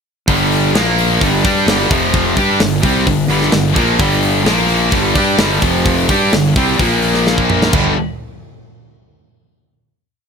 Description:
hard rock; 129 BPM; 4/4; straight; A4 = 440 Hz
cranked stack guitar; riff; 0.3-7.9 s; F2 to G4; -18 LUFS; right 13 dB; overdrive
heavy high-gain guitar; riff; 0.3-7.9 s; F2 to G4; -18 LUFS; left 13 dB; distortion
heavy high-gain guitar; riff; 0.3-7.9 s; F2 to G4; -19 LUFS; equal; distortion
fuzz fingered electric bass; bass; 0.3-7.9 s; F1 to G2; -18 LUFS; equal; overdrive
tight metal drum kit; drums; 0.3-7.8 s; crash cymbal, hi-hat, kick drum, snare drum, toms; -18 LUFS; equal
light reverb; -11 LUFS; side -6 dB against mid
0.3-7.7 riff; 7.7-9.6 final chord
drum fill 7.3-7.7
0.3 G5; 0.7 Bb5; 1.2 G5; 1.9 F5; 2.4 G5; 4.5 Bb5; 4.9 G5; 5.6 F5; 6.1 G5; 6.8 Bb5; 7.7 G5

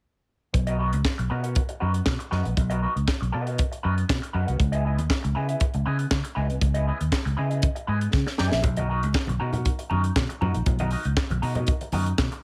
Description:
disco; 119 BPM; 4/4; straight; B major; A4 = 440 Hz
electric guitar through a small old amp; accompaniment; 0.5-12.4 s; B3 to F#5; -33 LUFS; equal; wah
fingered electric bass; bass; 0.5-12.3 s; A#1 to C#3; -27 LUFS; equal
tight funk drum kit; drums; 0.5-12.4 s; handclaps, hi-hat, kick drum, snare drum; -28 LUFS; equal
congas; percussion; 8.6-12.3 s; -36 LUFS; equal
small room ambience; -25 LUFS; mono
0.5-12.4 A section
drum fill 8.1-8.6
0.5 Bmaj7; 4.6 C#m9; 8.6 Bmaj7

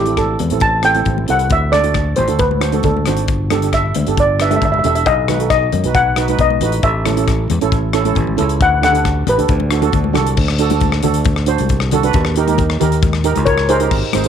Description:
calypso; 135 BPM; 4/4; straight; A4 = 441 Hz
steel pan; melody; 0.0-10.4, 13.5-14.3 s; G4 to A5; -16 LUFS; left 1 dB
steel pan; accompaniment; 0.0-14.3 s; C4 to C5; -19 LUFS; right 11 dB
fingered electric bass; bass; 0.0-14.3 s; E1 to F#2; -18 LUFS; left 1 dB
modern studio drum kit; drums; 0.1-14.3 s; crash cymbal, hi-hat, kick drum, rim click; -20 LUFS; left 3 dB
congas; percussion; 0.4-14.2 s; -24 LUFS; left 12 dB
moderate spring reverb, RT60 1.2 s, small room ambience; 1960s-style stereo with parts hard left and right; -13 LUFS; side -8 dB against mid
0.0-10.4 A section; 10.4-13.9 B section
steel pan solo 0.0-10.4
0.0 Am7; 1.5 D; 3.3 Gsus2; 5.1 B7; 6.8 A; 8.6 Dsus4; 9.5 D; 12.2 Eb7

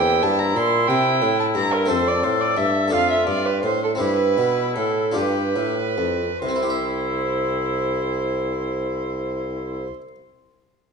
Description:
classical, baroque-style sonata movement with continuo; 46-60 BPM (dotted quarters); 6/8; straight; C major; A4 = 440 Hz
warm oboe; melody; 0.0-9.9 s; E4 to A4; -28 LUFS; left 8 dB
dark violin; second line; 0.0-9.9 s; A4 to C6; -23 LUFS; right 5 dB
harpsichord; accompaniment; 0.0-10.2 s; E2 to E5; -26 LUFS; left 4 dB
mellow bassoon; bass; 0.0-9.9 s; C2 to C3; -24 LUFS; equal
wet recital hall reverb, RT60 1.4 s; dark, warm production; -19 LUFS; side -5 dB against mid
0.0-6.4 A section; 6.4-10.9 B section
slowing down 0.9-6.4
0.0 C7/E; 1.9 F; 2.9 Dm/F; 4.0 C/G; 5.2 G7; 6.4 C

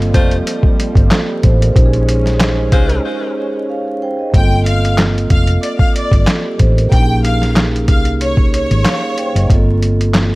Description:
hip hop, boom-bap hip-hop; 93 BPM; 4/4; swing 54% on 16ths; A4 = 440 Hz
vibraphone with soft mallets; accompaniment; 0.0-10.4 s; Bb3 to G5; -19 LUFS; right 2 dB; cassette tape
lush unison pad; sustained chords; 0.0-4.3 s; F3 to Db4; -26 LUFS; left 1 dB; chorus
hollow-body short-scale fingered electric bass; bass; 0.0-10.4 s; F1 to C2; -14 LUFS; equal
lo-fi sampler-style drum kit; drums; 0.0-10.3 s; handclaps, hi-hat, kick drum, snare drum; -13 LUFS; equal; overdrive
clear saxophone section; stabs; 0.1-3.0 s; Ab3 to C5; -22 LUFS; left 3 dB; digital delay
bright studio violin section; melody; 4.3-9.5 s; Db5 to G5; -21 LUFS; left 1 dB
small room ambience; vinyl crackle; -11 LUFS; side -21 dB against mid
0.0-4.3 A section; 4.3-10.4 B section
break 3.0-4.3
0.0 Gm11; 1.8 Bbm11; 4.3 Gm11; 6.9 Bbm11; 9.5 Gm11

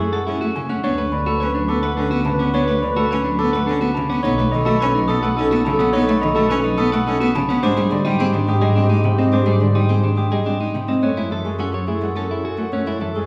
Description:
classical, minimalist pattern music; 106 BPM; 3/4; straight; F# minor; A4 = 440 Hz
warm concert grand piano; melody; 0.0-13.3 s; G4 to A5; -27 LUFS; equal
clear cello; accompaniment; 0.0-13.3 s; B#2 to C#4; -25 LUFS; equal
clean electric guitar; arpeggios; 0.0-13.2 s; B#3 to C#5; -27 LUFS; equal
rich studio double bass section; bass; 0.0-13.3 s; B1 to G#2; -25 LUFS; equal
mellow clarinet; second line; 0.1-13.3 s; G4 to B4; -30 LUFS; equal
glockenspiel with soft plastic mallets; arpeggios; 0.6-13.3 s; B5 to F#6; -28 LUFS; equal
wet recital hall reverb, RT60 1.5 s; heard from further back in the room; -19 LUFS; mono
0.0-11.0 A section; 11.0-13.3 B section
0.0 F#m7; 0.8 D6; 4.2 B7; 7.6 G#maj7; 11.0 F#m7

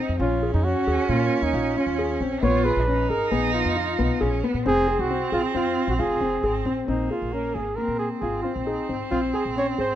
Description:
contemporary instrumental, chamber music in an uneven meter; 135 BPM; 5/4; straight; Bb minor; A4 = 440 Hz
rich cello; second line; 0.0-10.0 s; Bb3 to F4; -28 LUFS; right 5 dB
dark concert grand piano; arpeggios; 0.0-10.0 s; Bb3 to Ab4; -26 LUFS; left 5 dB
upright bass; bass; 0.1-10.0 s; F1 to Bb2; -28 LUFS; right 1 dB
mellow flugelhorn; melody; 0.2-10.0 s; Eb4 to Db5; -26 LUFS; right 2 dB
little or no reverb; close, detailed microphones; -21 LUFS; side -11 dB against mid
0.0-6.9 A section; 6.9-10.0 B section
0.2 Bbm7; 2.4 Db7; 4.7 Fm; 6.9 Bbm9

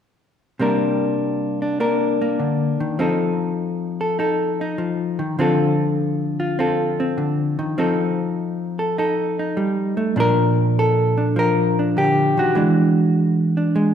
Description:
solo jazz; 100 BPM; 4/4; swing 68% on 8ths; Bb major; A4 = 440 Hz
hollow-body jazz guitar; solo; 0.6-13.9 s; Bb2 to Bb4; -18 LUFS; equal
wet recital hall reverb, RT60 1.6 s; recorded in a church or concert hall; -18 LUFS; side -8 dB against mid
0.6-10.2 A section; 10.2-13.9 B section
0.6 C7sus2; 3.0 F7; 5.4 Dm7; 7.8 F7; 10.2 Bb6; 12.6 E9

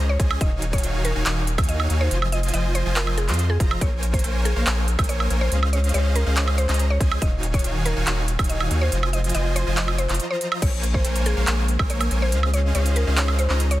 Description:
future bass; 141 BPM; 4/4; half-time; Eb dorian; A4 = 439 Hz
mallet-like synth pluck; melody; 0.0-13.8 s; Ab4 to Eb5; -30 LUFS; left 1 dB; chorus, sidechain pumping, tape echo
supersaw chords; riff; 0.0-13.6 s; Eb3 to C6; -28 LUFS; right 1 dB; sidechain pumping
saturated sub bass; bass; 0.0-13.8 s; Eb1 to F2; -22 LUFS; equal; sidechain pumping
big-room dance drum kit; drums; 0.2-13.8 s; crash cymbal, handclaps, hi-hat, woodblock; -27 LUFS; right 2 dB; overdrive
electronic kick drum; drums; 0.2-11.9 s; -22 LUFS; equal
airy breathy pad; sustained chords; 11.1-13.8 s; Db3 to C5; -35 LUFS; right 1 dB; chorus, sidechain pumping
little or no reverb; dense, heavily limited modern master; -19 LUFS; side -15 dB against mid
0.0-10.6 A section; 10.6-13.8 A section
drop 0.0-10.6, 10.6-13.8; break 10.2-10.6
0.4 Ebm11; 2.1 Fm7; 3.8 Bbm9; 5.5 Dbmaj9; 7.2 Ebm11; 8.9 Fm7; 10.6 Bbm9; 12.3 Dbmaj9

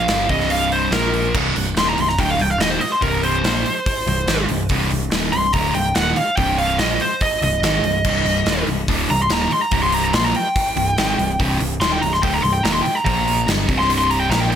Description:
hard rock; 143 BPM; 4/4; straight; C minor; A4 = 440 Hz
smooth overdriven lead guitar; melody; 0.0-14.6 s; Bb4 to C6; -20 LUFS; equal
sludgy distorted guitar; riff; 0.0-14.6 s; C2 to Bb3; -21 LUFS; equal; overdrive
growling picked electric bass; bass; 0.0-14.6 s; C1 to Bb1; -24 LUFS; equal; overdrive
gated 80s drum kit; drums; 0.1-14.6 s; crash cymbal, hi-hat, kick drum, snare drum; -22 LUFS; equal
light reverb, small room ambience; -16 LUFS; side -9 dB against mid
0.0-14.6 A section
lead electric guitar solo 0.0-14.6
0.1 C5; 0.9 Bb5; 1.3 Cm; 13.1 Bb5; 13.5 C5

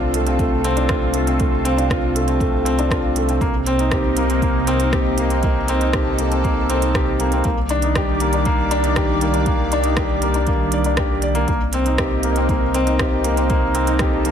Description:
piano and strings electronica; 119 BPM; 4/4; straight; C dorian; A4 = 440 Hz
lush unison pad; sustained chords; 0.0-14.3 s; C3 to D5; -24 LUFS; equal; chorus, phaser, sidechain pumping
felt-muted upright piano; riff; 0.0-14.3 s; A3 to D5; -20 LUFS; left 1 dB; digital delay
warm sub bass; bass; 0.0-14.3 s; C2; -22 LUFS; equal; sidechain pumping
organic electronic drum kit; drums; 0.1-14.3 s; hi-hat, rim click; -27 LUFS; right 2 dB
electronic kick drum; drums; 0.4-14.1 s; -22 LUFS; equal
light reverb; -16 LUFS; side -8 dB against mid
0.0-14.3 A section
0.0 Dm7/C; 3.4 Cm7; 7.4 Ebmaj7/C; 11.5 Cm7

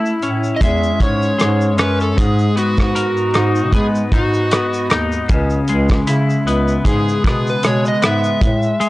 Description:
indie pop, bedroom pop; 77 BPM; 4/4; swing 55% on 16ths; A4 = 440 Hz
twelve-string electric guitar; accompaniment; 0.0-8.9 s; G#2 to A#4; -18 LUFS; left 2 dB; wide subtle chorus, vibrato effect
mellow bass clarinet; bass; 0.0-8.7 s; C#2 to A3; -19 LUFS; equal; tube saturation
cloth-damped thuddy drum kit; drums; 0.1-8.9 s; hi-hat, kick drum, rim click, shaker; -18 LUFS; equal; vintage 12-bit sampler grit
overdriven slide guitar; melody; 0.6-8.9 s; F#4 to E5; -21 LUFS; right 1 dB; wide subtle chorus
small room ambience; dry, gritty hardware recording, transformer saturation, cassette tape; -14 LUFS; side -18 dB against mid
0.0-8.9 A section
electric slide guitar solo 0.0-8.9
0.0 Amaj7; 2.2 G#m9; 5.3 C#m7

